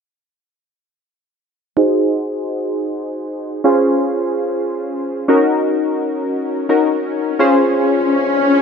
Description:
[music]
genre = pop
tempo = free time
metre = none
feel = none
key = Db major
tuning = A4 = 440 Hz
[part]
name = warm analog keys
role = accompaniment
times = 1.8-8.6 s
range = Db4 to C5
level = -15 LUFS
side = equal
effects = chorus, low-pass filter
[part]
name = swell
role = sound effects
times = 6.9-8.6 s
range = none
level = -18 LUFS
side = left 2 dB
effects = none
[sound]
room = wet small room reverb, RT60 0.5 s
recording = rough home demo mix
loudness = -15 LUFS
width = side -6 dB against mid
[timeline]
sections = 1.8-8.6 A section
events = filter sweep on synth keys 1.8-8.6; swell 6.9-8.6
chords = 1.8 Ab7; 3.6 Dbmaj7; 5.3 Gb6; 7.4 Dbmaj7

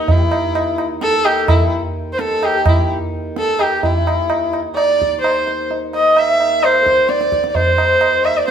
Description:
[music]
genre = indian classical, Hindustani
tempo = 129 BPM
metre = 4/4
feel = straight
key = Eb raga marwa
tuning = A4 = 444 Hz
[part]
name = rich sarangi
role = melody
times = 0.0-8.5 s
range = Eb4 to Fb5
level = -15 LUFS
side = right 1 dB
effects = none
[part]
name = pedal harmonium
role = second line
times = 0.0-8.5 s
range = Eb4 to Fb5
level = -23 LUFS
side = left 4 dB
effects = none
[part]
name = hand-pumped harmonium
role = drone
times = 0.0-8.5 s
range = Eb2 to Eb3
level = -29 LUFS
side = right 1 dB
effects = none
[part]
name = tabla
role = percussion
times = 0.1-8.5 s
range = none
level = -19 LUFS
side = right 1 dB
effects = none
[sound]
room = moderate stone room reverb, RT60 1.0 s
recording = band playing live in one room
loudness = -13 LUFS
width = side -8 dB against mid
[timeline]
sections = 0.0-3.8 A section; 3.8-8.5 B section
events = none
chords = none

